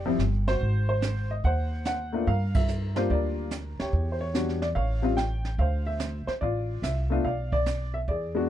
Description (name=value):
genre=jazz piano trio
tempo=145 BPM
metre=4/4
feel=swing 67% on 8ths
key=D minor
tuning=A4 = 440 Hz
part: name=warm upright piano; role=melody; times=0.0-8.5 s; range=F3 to G5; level=-29 LUFS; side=left 2 dB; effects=none
part: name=upright bass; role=bass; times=0.0-8.5 s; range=F1 to G2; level=-28 LUFS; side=equal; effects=none
part: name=jazz brush drum kit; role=drums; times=0.2-8.5 s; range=brushed snare drum, hi-hat, kick drum, ride cymbal, snare drum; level=-31 LUFS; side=right 2 dB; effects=none
room=little or no reverb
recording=dark, warm production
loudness=-25 LUFS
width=side -11 dB against mid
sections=0.0-8.5 A section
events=band accent 2.5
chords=0.0 Bb6 (rootless); 0.6 G#7; 2.3 Gm7; 3.9 Em9; 4.8 A7b13; 5.6 Dm9; 7.2 Bdim